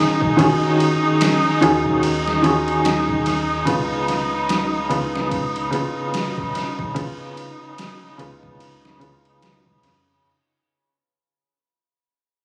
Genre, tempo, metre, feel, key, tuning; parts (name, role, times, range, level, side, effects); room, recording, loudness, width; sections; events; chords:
trip hop; 73 BPM; 4/4; swing 58% on 16ths; A4 = 440 Hz
felt-muted upright piano; accompaniment; 0.0-10.3 s; Db3 to Ab4; -22 LUFS; equal; tremolo, tape echo
muted studio string section; sustained chords; 0.0-10.3 s; Eb4; -25 LUFS; equal
trip hop sampler-style drum kit; drums; 0.2-10.1 s; kick drum, ride cymbal, snare drum; -28 LUFS; equal; overdrive
soft dub sub bass; bass; 1.6-10.2 s; Ab1 to F2; -37 LUFS; equal
light reverb, digital ambience; recorded on a phone in the room, club reverb, compression; -20 LUFS; mono
0.0-10.2 A section
fade-out 1.5-10.2
0.0 Ebm11; 3.7 Db7